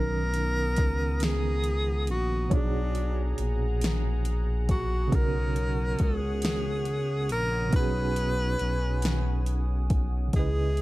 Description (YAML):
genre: slow six-eight R&B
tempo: 46 BPM (dotted quarters)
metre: 6/8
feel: straight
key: B major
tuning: A4 = 440 Hz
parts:
  - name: breathy tenor saxophone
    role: melody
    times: 0.0-10.8 s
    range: D4 to B4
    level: -31 LUFS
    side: equal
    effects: none
  - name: mellow tine electric piano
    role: accompaniment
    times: 0.0-10.8 s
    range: B2 to D#5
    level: -34 LUFS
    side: right 4 dB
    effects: medium tremolo
  - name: warm analog pad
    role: sustained chords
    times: 0.0-10.8 s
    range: B3 to D#6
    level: -40 LUFS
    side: left 2 dB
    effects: chorus
  - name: smooth gliding synth bass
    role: bass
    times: 0.0-10.8 s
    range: A#1 to C#2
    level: -28 LUFS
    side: equal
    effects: none
  - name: smooth R&B drum kit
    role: drums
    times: 0.3-10.8 s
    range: hi-hat, kick drum, snare drum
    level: -28 LUFS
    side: equal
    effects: none
room: little or no reverb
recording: dark, warm production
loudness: -25 LUFS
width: side -18 dB against mid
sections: 0.0-10.3 A section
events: none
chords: 0.0 Bmaj7; 2.5 A#7alt; 5.1 D#m7/B; 7.7 B69